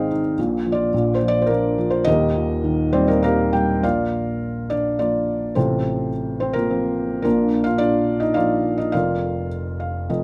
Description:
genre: classical, lyrical solo piano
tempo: 105 BPM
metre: 3/4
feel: uneven beats, rubato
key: Eb major, Bb major from 3.8 s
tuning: A4 = 441 Hz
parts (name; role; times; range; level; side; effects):
- felt-muted upright piano; solo; 0.0-10.2 s; Eb1 to G5; -21 LUFS; equal; none
room: light reverb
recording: close, detailed microphones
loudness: -21 LUFS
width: mono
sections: 0.0-3.8 A section; 3.8-10.2 B section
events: felt piano fill 2.6-3.8, 9.5-10.2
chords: 0.4 Bb5; 0.9 Bb; 2.1 Eb; 3.8 Bb; 5.6 F/A; 7.3 Bb; 8.9 Bb/F

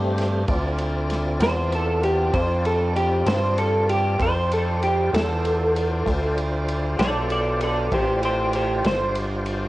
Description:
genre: slow blues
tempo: 65 BPM (dotted quarters)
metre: 12/8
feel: straight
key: unclear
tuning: A4 = 439 Hz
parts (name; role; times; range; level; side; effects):
- tonewheel organ; sustained chords; 0.0-9.7 s; A3 to D5; -30 LUFS; equal; slow rotary speaker, chorus vibrato, cassette tape
- gritty driven synth bass; bass; 0.0-9.7 s; G1 to G2; -24 LUFS; equal; none
- warm soul drum kit; drums; 0.2-9.6 s; kick drum, ride cymbal, snare drum; -30 LUFS; equal; cassette tape
- electric guitar through a small old amp; melody; 1.4-9.2 s; G4 to D5; -22 LUFS; equal; analog chorus, cassette tape
room: light reverb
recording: home recording on cassette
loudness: -20 LUFS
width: side -17 dB against mid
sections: 0.0-9.7 A section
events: clean electric guitar solo 0.0-9.7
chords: 0.5 Dm7

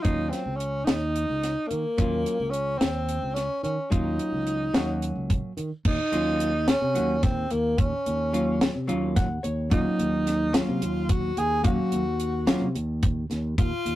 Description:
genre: progressive instrumental, band music in an uneven meter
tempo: 217 BPM (eighths)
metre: 7/8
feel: straight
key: Eb dorian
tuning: A4 = 440 Hz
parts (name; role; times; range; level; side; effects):
- breathy tenor saxophone; melody; 0.0-14.0 s; Bb3 to Ab4; -27 LUFS; equal; none
- hollow-body jazz guitar; accompaniment; 0.0-12.7 s; Gb3 to Gb5; -28 LUFS; equal; none
- modern bright fingered electric bass; bass; 0.0-14.0 s; Db2 to Eb3; -29 LUFS; equal; none
- deep reggae drum kit; drums; 0.0-14.0 s; crash cymbal, hi-hat, kick drum, snare drum; -25 LUFS; equal; none
room: moderate booth ambience, RT60 0.2 s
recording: rough rehearsal-room recording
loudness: -23 LUFS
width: side -15 dB against mid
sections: 0.0-5.9 A section; 5.9-14.0 B section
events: hollow-body jazz guitar fill 8.9-9.7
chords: 0.0 Ebm7

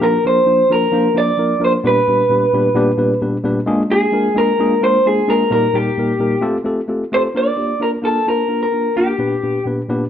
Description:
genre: soul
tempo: 131 BPM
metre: 4/4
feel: straight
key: Bb major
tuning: A4 = 440 Hz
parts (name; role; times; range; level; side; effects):
- electric guitar through a small old amp; melody; 0.0-9.6 s; G4 to D5; -15 LUFS; equal; none
- tine electric piano; accompaniment; 0.0-10.0 s; Bb2 to C5; -18 LUFS; left 1 dB; none
room: wet large studio reverb, RT60 0.9 s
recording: none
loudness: -14 LUFS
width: side -9 dB against mid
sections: 0.0-7.4 A section; 7.4-10.1 B section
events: none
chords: 0.0 Bb; 1.9 G/Bb; 3.7 Bb7; 5.5 Eb/Bb; 6.4 Fadd9; 7.4 Bb; 9.2 G/Bb

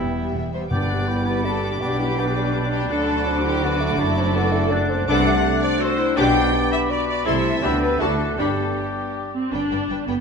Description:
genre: classical, dramatic, fast romantic movement for symphony orchestra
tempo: 165 BPM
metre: 3/4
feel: straight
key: G major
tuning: A4 = 438 Hz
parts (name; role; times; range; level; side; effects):
- rich studio violin section; melody; 0.0-10.1 s; E5 to D6; -33 LUFS; equal; none
- bright clarinet; second line; 0.0-9.3 s; B3 to G4; -30 LUFS; left 3 dB; none
- clear oboe; second line; 0.0-9.3 s; E4 to B5; -32 LUFS; right 1 dB; none
- mellow hollow concert flute; second line; 0.0-9.3 s; G5 to E6; -32 LUFS; left 1 dB; none
- rich symphonic violin section; second line; 0.0-10.2 s; B3 to G5; -26 LUFS; left 1 dB; none
- clear studio viola section; accompaniment; 0.0-10.1 s; G3 to A4; -26 LUFS; left 1 dB; none
- warm French horn section; sustained chords; 0.0-9.3 s; F#3 to G4; -28 LUFS; left 5 dB; none
- rich studio cello section; bass; 0.0-10.2 s; E2 to D3; -28 LUFS; right 2 dB; none
- rich symphonic double bass section; bass; 0.0-10.1 s; E1 to D2; -28 LUFS; right 3 dB; none
- mellow bassoon; accompaniment; 0.7-9.3 s; G3 to D4; -28 LUFS; right 2 dB; none
- timpani; percussion; 0.7-1.2 s; G2; -28 LUFS; equal; none
room: moderate scoring stage reverb, RT60 1.7 s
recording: dark, warm production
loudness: -18 LUFS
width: side -5 dB against mid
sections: 0.7-9.5 A section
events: none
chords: 0.0 Em; 0.7 G; 1.8 G/B; 2.9 D; 4.0 D/F#; 5.1 D7/C; 6.2 G/B; 7.3 Am/C; 7.6 G/D; 8.0 D; 8.4 G

